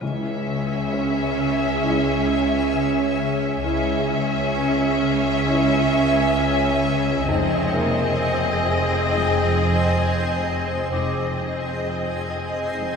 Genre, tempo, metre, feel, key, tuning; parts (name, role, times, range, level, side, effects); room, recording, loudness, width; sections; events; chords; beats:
cinematic, suspense film score; 66 BPM; 4/4; straight; C# dorian; A4 = 440 Hz
warm symphonic violin section; melody; 0.0-13.0 s; Eb5 to E5; -26 LUFS; left 4 dB
warm symphonic violin section; second line; 0.0-13.0 s; G#4; -29 LUFS; left 2 dB
rich symphonic viola section; accompaniment; 0.0-13.0 s; C4 to C#4; -28 LUFS; right 2 dB
backwards swelling texture; sustained chords; 0.8-13.0 s; C5 to G#5; -29 LUFS; right 1 dB; built-in reverb
mellow French horn section; sustained chords; 0.0-13.0 s; Ab3 to E4; -32 LUFS; left 2 dB
marimba with medium mallets; riff; 0.0-13.0 s; F2 to C#4; -25 LUFS; right 1 dB
rich symphonic cello section; bass; 0.0-13.0 s; C#2 to F2; -28 LUFS; right 1 dB
rich symphonic double bass section; bass; 0.0-13.0 s; F1 to C#2; -30 LUFS; right 1 dB
timpani; percussion; 0.0-1.3 s; C#3; -33 LUFS; left 3 dB
dark grand piano; texture; 0.0-13.0 s; A#3 to D6; -34 LUFS; right 2 dB
wet church reverb, RT60 3.1 s; recorded in a church or concert hall; -19 LUFS; side -6 dB against mid
0.0-13.0 A section
0.0 C#m; 7.3 Fm7
| 0.01 0.92 1.83 2.74 | 3.65 4.56 5.47 6.38 | 7.29 8.20 9.11 10.02 | 10.92 11.83 12.74